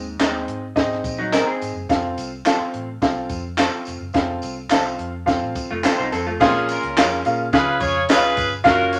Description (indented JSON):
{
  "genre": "uptempo 1960s-style soul",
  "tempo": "106 BPM",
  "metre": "4/4",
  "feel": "straight",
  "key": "unclear",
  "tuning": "A4 = 440 Hz",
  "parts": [
    { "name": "clear grand piano", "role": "accompaniment", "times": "0.0-9.0 s", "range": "Ab2 to F5", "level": "-24 LUFS", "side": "equal", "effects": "none" },
    { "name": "vintage muted fingered electric bass", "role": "bass", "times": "0.0-9.0 s", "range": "F1 to Bb2", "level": "-36 LUFS", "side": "equal", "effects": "none" },
    { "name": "electric guitar through a small old amp", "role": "stabs", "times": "0.2-8.2 s", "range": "Eb4 to Db5", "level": "-28 LUFS", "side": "equal", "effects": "none" },
    { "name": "compact cocktail drum kit", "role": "drums", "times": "0.2-9.0 s", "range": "crash cymbal, hi-hat, kick drum, snare drum", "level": "-25 LUFS", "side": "equal", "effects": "none" },
    { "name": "handclaps and tambourine", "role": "percussion", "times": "0.2-9.0 s", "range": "none", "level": "-31 LUFS", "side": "equal", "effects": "none" },
    { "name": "vintage hollow-body jazz guitar", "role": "riff", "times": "1.2-1.9, 5.7-6.5 s", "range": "Gb3 to C5", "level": "-26 LUFS", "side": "equal", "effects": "none" },
    { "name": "clear saxophone section", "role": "second line", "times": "6.4-9.0 s", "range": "Bb3 to Db5", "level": "-23 LUFS", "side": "equal", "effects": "none" }
  ],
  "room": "moderate studio reverb, RT60 0.7 s",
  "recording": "none",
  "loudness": "-21 LUFS",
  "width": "mono",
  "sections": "0.0-6.4 A section; 6.4-9.0 B section",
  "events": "none",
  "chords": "0.0 Ab; 1.9 F; 6.4 Bbm7; 7.5 Db7",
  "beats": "0.20 0.77 1.33 | 1.90 2.46 3.03 3.59 | 4.16 4.72 5.28 5.85 | 6.41 6.97 7.53 8.10 | 8.66"
}